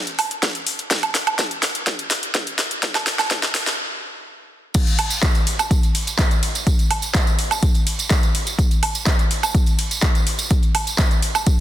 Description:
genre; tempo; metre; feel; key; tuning
house; 125 BPM; 4/4; straight; none; none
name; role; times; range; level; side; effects
deep house drum kit; drums; 0.1-11.6 s; crash cymbal, handclaps, hi-hat, ride cymbal, snare drum, woodblock; -21 LUFS; right 1 dB; overdrive, sidechain pumping on hats, high-pass filter on hats, studio ambience, high-pass filter on snare, sidechain pumping on perc, high-pass filter on perc, sidechain pumping on cymbals, high-pass filter on cymbals
electronic kick drum; drums; 0.4-11.6 s; none; -18 LUFS; equal; overdrive, high-pass filter on kick, studio ambience
tambourine; percussion; 4.7-11.6 s; none; -28 LUFS; right 4 dB; none
room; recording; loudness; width
light reverb; dense, heavily limited modern master, high-pass filter; -17 LUFS; side -12 dB against mid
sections
0.0-4.7 A section; 4.7-11.6 B section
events
build-up 0.0-4.7; drum fill 0.0-3.8; stop 3.8-4.7; drop 4.7-11.6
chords
none

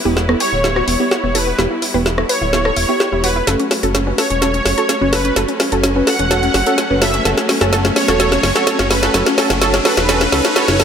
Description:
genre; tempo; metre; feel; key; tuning
progressive house; 127 BPM; 4/4; straight; unclear; A4 = 440 Hz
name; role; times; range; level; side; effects
warm studio string section; sustained chords; 0.0-10.8 s; F#3 to E4; -25 LUFS; left 1 dB; stereo widening
deep mellow chord stab; stabs; 0.0-10.8 s; B3 to B4; -20 LUFS; right 2 dB; chorus, dub echo
analog pluck; arpeggios; 0.1-10.8 s; B3 to B4; -22 LUFS; left 1 dB; chorus, dub echo
fat analog bass; bass; 0.1-10.8 s; D1 to C#2; -21 LUFS; equal; none
deep house drum kit; drums; 0.2-10.8 s; hi-hat, rim click, snare drum; -18 LUFS; equal; none
soft supersaw; melody; 0.4-10.8 s; A4 to F#5; -20 LUFS; right 1 dB; dub echo
riser; sound effects; 5.6-10.8 s; none; -25 LUFS; left 1 dB; none
room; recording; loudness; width
light reverb; none; -13 LUFS; side -7 dB against mid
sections
0.0-10.8 A section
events
build-up 0.0-10.8; drum fill 0.0-10.8; filter sweep on synth arpeggio sound 0.0-10.8; filter sweep on synth stab 0.0-10.8; riser 5.6-10.8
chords
0.0 Em; 3.5 F#m

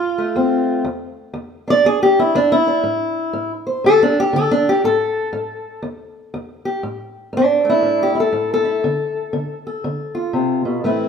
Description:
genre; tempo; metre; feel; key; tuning
acoustic country blues, solo or duo; 120 BPM; 4/4; swing 63% on 8ths; A minor; A4 = 437 Hz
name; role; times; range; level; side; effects
fingerpicked acoustic archtop guitar; solo; 0.0-11.1 s; E2 to D5; -16 LUFS; equal; none
room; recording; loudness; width
wet stone room reverb, RT60 1.3 s; band playing live in one room; -15 LUFS; side -6 dB against mid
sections
0.0-6.8 A section; 6.8-11.1 B section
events
steel-string acoustic guitar solo 0.0-6.8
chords
0.0 F; 0.9 E7(no3); 2.8 Am; 3.8 N.C.; 5.8 Em; 6.8 A5; 8.8 Dm

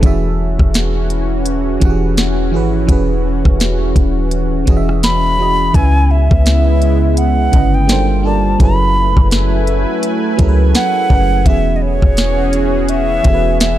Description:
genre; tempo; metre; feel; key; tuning
contemporary R&B; 84 BPM; 4/4; swing 58% on 16ths; E major; A4 = 441 Hz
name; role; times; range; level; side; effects
FM electric piano; accompaniment; 0.0-13.8 s; C#3 to A5; -20 LUFS; right 3 dB; chorus
lush unison pad; sustained chords; 0.0-13.8 s; C#3 to G#5; -20 LUFS; equal; chorus
warm 808-style bass; bass; 0.0-13.8 s; D#1 to C#2; -15 LUFS; equal; none
trap drum kit; drums; 0.0-13.8 s; hi-hat, kick drum, rim click, snare drum; -14 LUFS; equal; none
breathy alto ocarina; melody; 5.0-13.8 s; C#5 to B5; -17 LUFS; equal; digital delay
room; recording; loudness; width
little or no reverb; dark, warm production; -11 LUFS; side -13 dB against mid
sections
0.0-13.8 A section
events
none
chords
0.0 E69; 5.7 C#m7; 7.9 Gm11; 8.6 F#m11; 11.5 E69

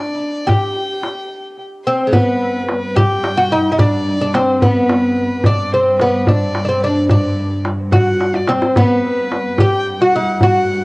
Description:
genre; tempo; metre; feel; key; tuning
Persian modal ensemble; 72 BPM (dotted quarters); 6/8; straight; G dastgah chahargah; A4 = 438 Hz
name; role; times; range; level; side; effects
oud; melody; 0.0-10.8 s; Ab3+45c to G4; -16 LUFS; equal; cassette tape
rich violin; second line; 0.0-10.8 s; B4 to G5; -24 LUFS; equal; none
tombak; percussion; 0.5-10.5 s; none; -15 LUFS; equal; none
muted studio cello section; drone; 2.1-10.8 s; G2; -24 LUFS; equal; none
room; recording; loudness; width
light reverb; home recording on cassette, lossy compression artefacts; -13 LUFS; side -24 dB against mid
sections
0.0-2.1 A section; 2.1-10.8 B section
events
drum fill 8.2-8.8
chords
none

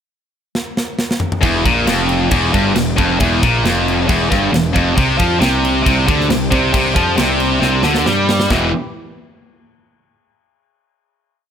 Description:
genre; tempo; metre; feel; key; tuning
heavy metal; 136 BPM; 4/4; straight; E phrygian; A4 = 440 Hz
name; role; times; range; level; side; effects
tight metal drum kit; drums; 0.6-8.6 s; crash cymbal, kick drum, snare drum, toms; -19 LUFS; equal; none
heavy high-gain guitar; riff; 1.4-8.7 s; E2 to G3; -18 LUFS; right 13 dB; distortion
tight distorted guitar; riff; 1.4-8.7 s; E2 to G3; -16 LUFS; left 7 dB; distortion
fuzz picked electric bass; bass; 1.4-8.7 s; E1 to G2; -20 LUFS; equal; overdrive
warm chamber string section; sustained chords; 5.0-8.7 s; C3 to C5; -28 LUFS; right 4 dB; none
room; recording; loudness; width
small room reverb; none; -12 LUFS; side -8 dB against mid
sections
0.0-1.4 pickup bar; 1.4-8.5 riff; 8.5-10.3 final chord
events
drum fill 0.5-1.4, 7.6-8.5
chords
0.0 N.C.; 1.4 Em; 5.0 C5; 8.5 E5

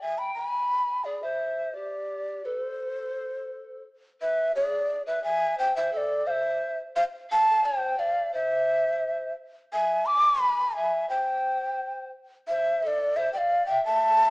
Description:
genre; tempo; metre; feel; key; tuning
andean folk, Andean ensemble; 87 BPM; 2/4; straight; A minor; A4 = 440 Hz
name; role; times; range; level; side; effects
breathy mellow large quena; melody; 0.0-14.3 s; C5 to D6; -24 LUFS; equal; none
breathy pan flute; second line; 0.0-14.3 s; G4 to G#5; -33 LUFS; left 1 dB; none
room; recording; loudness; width
moderate stone room reverb, RT60 1.3 s; band playing live in one room, small speaker sound; -24 LUFS; side -23 dB against mid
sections
0.0-4.2 A section; 4.2-14.3 B section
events
none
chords
none

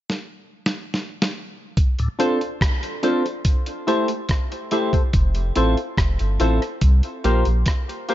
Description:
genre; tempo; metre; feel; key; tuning
dub reggae; 71 BPM; 4/4; straight; D minor; A4 = 440 Hz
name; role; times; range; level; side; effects
dusty soul sampler-style drum kit; drums; 0.1-8.1 s; hi-hat, kick drum, rim click, snare drum; -21 LUFS; equal; none
tonewheel organ; accompaniment; 2.0-2.1 s; D2 to A2; -23 LUFS; left 1 dB; chorus vibrato, slow rotary speaker
clean electric guitar; accompaniment; 2.2-8.1 s; A3 to C5; -26 LUFS; right 4 dB; high-pass filter, dub echo
percussive organ stab; stabs; 2.2-8.1 s; D4 to C5; -25 LUFS; left 4 dB; chorus, high-pass filter, dub echo
soft dub sub bass; bass; 5.1-7.6 s; F1 to C2; -19 LUFS; equal; none
room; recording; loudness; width
light reverb; nothing above 7.5 kHz; -19 LUFS; side -14 dB against mid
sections
0.0-1.8 A section; 1.8-8.1 B section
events
drum fill 0.1-1.8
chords
0.0 N.C.; 1.8 Dm7; 3.5 Am7; 5.1 Fmaj7; 6.8 C7sus4

